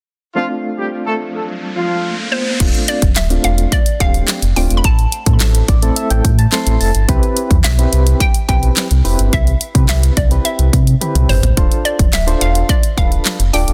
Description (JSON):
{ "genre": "dance-pop", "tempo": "107 BPM", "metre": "4/4", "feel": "straight", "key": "unclear", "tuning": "A4 = 440 Hz", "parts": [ { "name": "warm horn section", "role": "melody", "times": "0.4-2.2 s", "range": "F3 to A4", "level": "-23 LUFS", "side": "equal", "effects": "tape echo" }, { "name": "soft electric-piano-like synth keys", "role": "accompaniment", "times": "0.4-13.7 s", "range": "A3 to C6", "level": "-24 LUFS", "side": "equal", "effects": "chorus, tremolo, sidechain pumping" }, { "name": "riser", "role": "sound effects", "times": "1.3-2.6 s", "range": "none", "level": "-26 LUFS", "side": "equal", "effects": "none" }, { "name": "hollow square pluck", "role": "melody", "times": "2.3-13.7 s", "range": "C5 to B5", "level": "-24 LUFS", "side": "equal", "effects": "chorus, tape echo" }, { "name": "sub bass with octave", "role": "bass", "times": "2.6-13.7 s", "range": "D1 to C3", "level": "-16 LUFS", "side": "equal", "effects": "sidechain pumping" }, { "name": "pop drum kit", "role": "drums", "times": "2.6-13.7 s", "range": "crash cymbal, handclaps, hi-hat, kick drum, snare drum, toms", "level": "-17 LUFS", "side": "equal", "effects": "soft clipping on snare" } ], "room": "digital ambience", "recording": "dense, heavily limited modern master", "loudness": "-14 LUFS", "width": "mono", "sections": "0.4-2.6 A section; 2.6-13.7 B section", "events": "riser 1.3-2.6; synth keys fill 5.4-7.1; drum fill 11.0-11.6", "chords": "0.4 Dm7; 4.8 Am; 7.1 Cmaj7; 11.6 Dm7" }